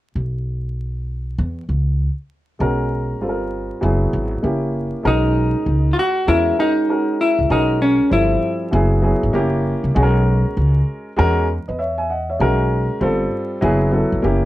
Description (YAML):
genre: hip hop, jazz-hop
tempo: 98 BPM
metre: 4/4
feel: swing 63% on 16ths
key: B major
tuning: A4 = 445 Hz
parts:
  - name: upright bass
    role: bass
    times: 0.2-14.5 s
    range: F#1 to E2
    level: -19 LUFS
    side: equal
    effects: none
  - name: dark upright piano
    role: accompaniment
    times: 2.6-14.5 s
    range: E#3 to G#5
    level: -20 LUFS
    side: equal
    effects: none
  - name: vintage hollow-body jazz guitar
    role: melody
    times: 5.1-9.3 s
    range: C#4 to F#4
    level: -17 LUFS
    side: equal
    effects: slapback echo
room: moderate studio reverb, RT60 0.6 s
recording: worn, warbling old tape, cassette tape, vinyl crackle, warbly pitch drift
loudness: -16 LUFS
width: side -15 dB against mid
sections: 0.2-5.1 A section; 5.1-14.5 B section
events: none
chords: 0.2 N.C.; 1.4 C#m; 2.6 Bsus2; 3.2 Gm7; 3.8 F#sus2; 4.4 F#7b9; 5.1 Bmaj9; 6.3 E6; 7.5 Bmaj9; 8.1 Gsus2; 8.7 F#sus2; 9.3 F#7b9; 10.0 Bsus2; 11.2 E6; 12.4 Bsus2; 13.0 Gsus2; 13.6 F#m9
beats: | 0.16 0.77 1.38 1.99 | 2.60 3.22 3.83 4.44 | 5.05 5.67 6.28 6.89 | 7.50 8.12 8.73 9.34 | 9.95 10.56 11.18 11.79 | 12.40 13.01 13.63 14.24